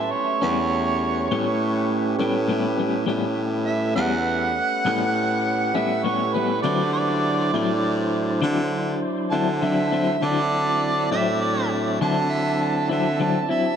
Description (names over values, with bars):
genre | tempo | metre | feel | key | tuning
blues | 67 BPM (dotted quarters) | 12/8 | straight | A mixolydian | A4 = 440 Hz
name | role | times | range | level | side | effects
mellow harmonica | second line | 0.0-13.8 s | B4 to A5 | -25 LUFS | right 3 dB | overdrive, ping-pong delay
tonewheel organ | sustained chords | 0.0-13.8 s | F#3 to C5 | -26 LUFS | right 1 dB | slow rotary speaker
warm baritone saxophone | bass | 0.0-13.5 s | E2 to D3 | -25 LUFS | equal | none
electric guitar through a small old amp | accompaniment | 0.4-13.7 s | A2 to E4 | -27 LUFS | left 5 dB | tremolo
room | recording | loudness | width
wet huge ambient reverb, RT60 6.4 s | dreamy mix soaked in reverb | -20 LUFS | side -8 dB against mid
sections
0.0-13.8 A section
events
harmonica solo 0.0-13.8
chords
0.0 A9; 6.6 D9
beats
0.41 1.30 2.19 | 3.08 3.97 4.86 5.75 | 6.64 7.53 8.43 9.32 | 10.21 11.10 12.00 12.89